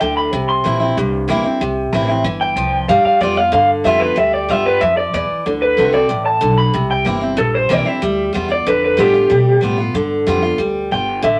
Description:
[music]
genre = rockabilly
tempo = 187 BPM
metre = 4/4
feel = straight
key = G mixolydian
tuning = A4 = 441 Hz
[part]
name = electric guitar through a small old amp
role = melody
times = 0.0-11.4 s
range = G4 to C6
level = -18 LUFS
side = equal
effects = none
[part]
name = picked steel-string acoustic guitar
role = accompaniment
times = 0.0-11.4 s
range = G2 to F#4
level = -20 LUFS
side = equal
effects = none
[part]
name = upright bass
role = bass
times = 0.0-11.4 s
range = G1 to B2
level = -24 LUFS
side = equal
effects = none
[sound]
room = moderate club reverb, RT60 0.9 s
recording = none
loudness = -16 LUFS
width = mono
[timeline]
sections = 0.0-10.6 A section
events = clean electric guitar solo 0.0-10.6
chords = 0.3 C7; 2.9 G7; 5.5 D7; 6.7 C7; 8.0 G7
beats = 0.01 | 0.33 0.65 0.97 1.29 | 1.61 1.93 2.25 2.57 | 2.89 3.21 3.53 3.85 | 4.17 4.50 4.82 5.14 | 5.46 5.78 6.10 6.42 | 6.74 7.06 7.38 7.70 | 8.02 8.34 8.66 8.98 | 9.31 9.63 9.95 10.27 | 10.59 10.91 11.23

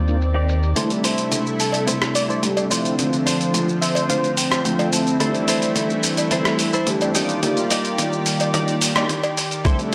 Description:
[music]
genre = nu-disco, nu disco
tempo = 108 BPM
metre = 4/4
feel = straight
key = C major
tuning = A4 = 436 Hz
[part]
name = mellow synth brass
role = accompaniment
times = 0.0-9.9 s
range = F3 to D5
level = -26 LUFS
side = equal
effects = chorus, sidechain pumping, slapback echo
[part]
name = lush unison pad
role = sustained chords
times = 0.0-9.9 s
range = C3 to G5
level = -27 LUFS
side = equal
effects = chorus, sidechain pumping
[part]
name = chorused synth bass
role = bass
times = 0.0-0.7 s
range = Eb2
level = -21 LUFS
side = equal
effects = none
[part]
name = swell and riser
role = sound effects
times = 0.0-0.8, 9.7-9.9 s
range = none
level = -34 LUFS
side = equal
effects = none
[part]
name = dusty soul sampler-style drum kit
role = drums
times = 0.1-9.9 s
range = hi-hat, rim click, shaker, toms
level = -25 LUFS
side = equal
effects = high-pass filter on perc, low-pass filter on perc, high-pass filter on hats, low-pass filter on hats, high-pass filter on toms, low-pass filter on toms, high-pass filter on snare, low-pass filter on snare, high-pass filter on room, low-pass filter on room
[part]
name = direct-recorded clean electric guitar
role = riff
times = 0.3-9.8 s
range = D4 to A5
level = -28 LUFS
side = equal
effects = analog chorus, low-pass filter
[part]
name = unison lead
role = melody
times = 1.6-4.6 s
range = A4 to D5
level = -29 LUFS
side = equal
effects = tape echo
[part]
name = cowbell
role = percussion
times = 1.7-9.3 s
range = none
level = -29 LUFS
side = equal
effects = none
[part]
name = electronic kick drum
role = drums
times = 9.7-9.8 s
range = none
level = -20 LUFS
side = equal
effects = none
[sound]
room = moderate echo chamber reverb, RT60 2.1 s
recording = none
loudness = -20 LUFS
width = mono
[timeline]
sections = 0.8-9.9 A section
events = swell 0.0-0.8; build-up 0.8-9.9; drum fill 0.8-9.9; filter sweep on clean electric guitar 0.8-9.9; clean electric guitar fill 3.5-5.2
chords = 0.0 Ebmaj7; 0.8 C6; 2.7 Dm7; 5.2 C6/E; 7.2 Ebmaj7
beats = 0.21 | 0.76 1.32 1.88 2.43 | 2.99 3.54 4.10 4.65 | 5.21 5.76 6.32 6.88 | 7.43 7.99 8.54 9.10 | 9.65

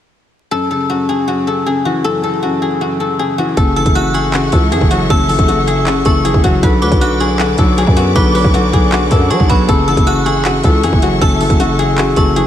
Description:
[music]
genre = hip hop, trap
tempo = 157 BPM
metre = 4/4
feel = half-time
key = F# minor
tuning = A4 = 435 Hz
[part]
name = guzheng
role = melody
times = 0.5-12.5 s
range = F#4 to B4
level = -17 LUFS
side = left 3 dB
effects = ping-pong delay
[part]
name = clear baby grand piano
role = accompaniment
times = 0.5-12.5 s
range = F#2 to B3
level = -17 LUFS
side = left 2 dB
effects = none
[part]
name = warm symphonic string section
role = sustained chords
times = 3.6-12.5 s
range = A4 to D6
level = -23 LUFS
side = right 1 dB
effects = none
[part]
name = growling 808-style bass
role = bass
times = 3.6-12.4 s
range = F#1 to F#3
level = -17 LUFS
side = equal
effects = none
[part]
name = trap drum kit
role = drums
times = 3.6-12.5 s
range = handclaps, hi-hat, kick drum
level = -14 LUFS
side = equal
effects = vintage 12-bit sampler grit
[part]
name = metallic FM bell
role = second line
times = 3.8-12.4 s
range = B5 to F#6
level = -22 LUFS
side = right 4 dB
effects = chorus, ping-pong delay
[sound]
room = moderate huge ambient reverb, RT60 6.1 s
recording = dreamy mix soaked in reverb, vinyl crackle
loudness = -11 LUFS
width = side -10 dB against mid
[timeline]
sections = 0.5-3.6 A section; 3.6-12.5 B section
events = none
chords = 0.5 F#5; 3.6 F#m7; 6.6 Bm; 9.7 F#m7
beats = | 0.52 0.90 1.28 1.66 | 2.04 2.43 2.81 3.19 | 3.57 3.96 4.34 4.72 | 5.10 5.48 5.87 6.25 | 6.63 7.01 7.39 7.78 | 8.16 8.54 8.92 9.30 | 9.69 10.07 10.45 10.83 | 11.22 11.60 11.98 12.36

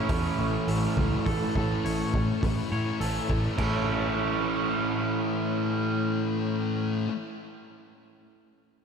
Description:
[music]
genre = rock, shoegaze and dream pop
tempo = 103 BPM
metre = 4/4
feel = straight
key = A major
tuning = A4 = 439 Hz
[part]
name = twangy electric guitar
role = arpeggios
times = 0.0-4.4 s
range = A4 to C#5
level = -37 LUFS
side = right 1 dB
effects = wide subtle chorus, diffuse ambient delay
[part]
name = biting overdriven guitar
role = riff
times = 0.0-7.1 s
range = A2 to E4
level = -29 LUFS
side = right 6 dB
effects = reverse reverb
[part]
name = thick fuzz guitar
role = riff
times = 0.0-7.1 s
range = A2 to A3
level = -30 LUFS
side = left 8 dB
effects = distortion, ensemble chorus
[part]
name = vintage muted picked electric bass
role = bass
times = 0.1-7.0 s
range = A1 to A2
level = -31 LUFS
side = equal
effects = none
[part]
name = raw garage drum kit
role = drums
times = 0.1-3.7 s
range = crash cymbal, hi-hat, kick drum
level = -32 LUFS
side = equal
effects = none
[sound]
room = wet lush hall reverb, RT60 3.0 s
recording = dreamy mix soaked in reverb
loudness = -25 LUFS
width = side -6 dB against mid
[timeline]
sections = 0.0-3.6 A section; 3.6-5.9 B section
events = none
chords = 0.0 A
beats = 0.09 0.68 | 1.26 1.84 2.42 3.01 | 3.59 4.17 4.75 5.33

